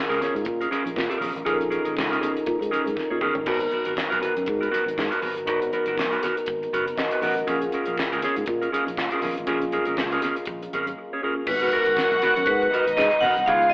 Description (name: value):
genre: disco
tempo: 120 BPM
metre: 4/4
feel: swing 56% on 16ths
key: G# dorian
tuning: A4 = 440 Hz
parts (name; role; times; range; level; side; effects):
- mellow tine electric piano; accompaniment; 0.0-13.7 s; G#3 to F#5; -29 LUFS; left 1 dB; medium stereo tremolo
- mellow French horn section; sustained chords; 0.0-13.7 s; B2 to A#4; -33 LUFS; equal; none
- clean electric guitar; accompaniment; 0.1-13.7 s; B3 to C#5; -26 LUFS; right 1 dB; none
- fingered electric bass; bass; 0.1-13.7 s; F#1 to A#2; -32 LUFS; equal; none
- damped 70s drum kit; drums; 0.1-13.7 s; crash cymbal, handclaps, hi-hat, kick drum, snare drum, toms; -30 LUFS; equal; none
- congas; percussion; 0.2-13.7 s; none; -42 LUFS; equal; none
- vibraphone with medium hard mallets; melody; 11.5-13.7 s; A#4 to F#5; -20 LUFS; equal; none
- clear studio string section; second line; 11.5-13.7 s; D#4 to F#5; -25 LUFS; equal; none
- tambourine; percussion; 12.0-13.1 s; none; -49 LUFS; right 1 dB; none
room: moderate stone room reverb, RT60 1.2 s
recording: band playing live in one room, telephone sound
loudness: -21 LUFS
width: side -24 dB against mid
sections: 0.0-11.5 A section; 11.5-13.7 B section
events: drum fill 3.0-3.5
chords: 0.0 A#m7; 3.5 G#m9; 7.5 A#m7; 11.5 G#m9